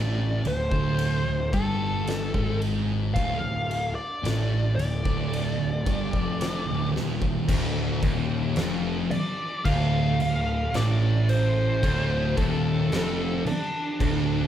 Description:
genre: stoner and doom metal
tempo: 55 BPM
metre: 4/4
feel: straight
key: unclear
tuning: A4 = 440 Hz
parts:
  - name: fuzz lead guitar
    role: melody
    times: 0.0-14.5 s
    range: D4 to F5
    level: -30 LUFS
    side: left 1 dB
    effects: wah, distortion
  - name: thick fuzz guitar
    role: riff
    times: 0.0-14.5 s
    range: D2 to A2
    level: -32 LUFS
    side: left 6 dB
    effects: distortion
  - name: thick fuzz guitar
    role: riff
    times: 0.0-14.5 s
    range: D2 to A2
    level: -28 LUFS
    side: right 4 dB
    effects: distortion
  - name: fuzz picked electric bass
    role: bass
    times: 0.0-14.5 s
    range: D1 to A1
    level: -30 LUFS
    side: equal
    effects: overdrive
  - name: oversized low-tuned drum kit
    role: drums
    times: 0.5-14.3 s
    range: crash cymbal, kick drum, ride cymbal, snare drum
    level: -31 LUFS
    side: equal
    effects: none
  - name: crunchy overdriven guitar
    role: riff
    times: 7.5-14.5 s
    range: D2 to A2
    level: -31 LUFS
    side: left 2 dB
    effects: none
room: wet large studio reverb, RT60 1.2 s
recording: band playing live in one room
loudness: -23 LUFS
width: side -10 dB against mid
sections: 0.0-7.5 A section; 7.5-14.5 B section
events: drum fill 7.0-7.5; lead electric guitar solo 7.5-14.5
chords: 0.0 Dm

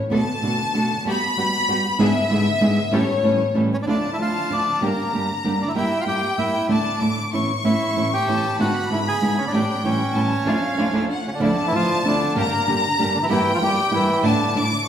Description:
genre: tango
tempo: 192 BPM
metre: 3/4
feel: rubato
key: D harmonic minor from 3.9 s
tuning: A4 = 438 Hz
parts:
  - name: clear studio violin section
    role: second line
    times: 0.1-14.9 s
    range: C#5 to D6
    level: -24 LUFS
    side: left 2 dB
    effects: none
  - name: flamenco guitar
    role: accompaniment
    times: 0.1-14.7 s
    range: G2 to G#4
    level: -22 LUFS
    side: right 1 dB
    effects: none
  - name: muted studio string section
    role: stabs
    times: 0.1-14.7 s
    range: G2 to A4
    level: -29 LUFS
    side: equal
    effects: none
  - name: bandoneon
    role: melody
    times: 3.7-14.5 s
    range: C#3 to G#5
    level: -23 LUFS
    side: equal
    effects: none
room: wet recital hall reverb, RT60 1.4 s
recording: recorded in a church or concert hall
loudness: -18 LUFS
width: side -9 dB against mid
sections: 0.0-3.9 A section; 3.9-11.4 B section; 11.4-14.9 B section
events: violin section solo 0.0-3.9; band accent 10.5-11.4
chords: 0.1 Bm7; 1.1 Gmaj7; 2.0 E7/G#; 2.9 A7; 3.9 Dmadd9; 4.8 Gm; 5.8 Edim/G; 6.7 Asus4; 7.3 A; 8.6 E7/G#; 9.5 A7; 10.5 Dmadd9; 12.4 Gm; 13.3 Edim/G; 14.2 Asus4

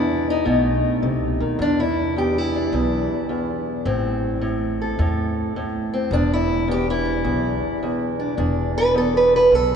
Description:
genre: acoustic country blues, solo or duo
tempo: 106 BPM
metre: 4/4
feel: swing 66% on 8ths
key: unclear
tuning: A4 = 439 Hz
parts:
  - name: fingerpicked steel-string acoustic guitar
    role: melody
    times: 0.0-9.8 s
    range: E2 to B4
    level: -19 LUFS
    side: equal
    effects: none
  - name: upright bass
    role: bass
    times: 0.0-9.8 s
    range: E1 to E2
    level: -26 LUFS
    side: equal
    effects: none
room: wet cathedral reverb, RT60 6.2 s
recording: recorded in a church or concert hall, nothing above 10.5 kHz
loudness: -18 LUFS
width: side -7 dB against mid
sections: 0.0-1.6 A section; 1.6-9.8 B section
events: steel-string acoustic guitar solo 1.6-9.8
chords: 0.5 B7b9; 1.6 E5; 3.9 Am; 6.1 E5

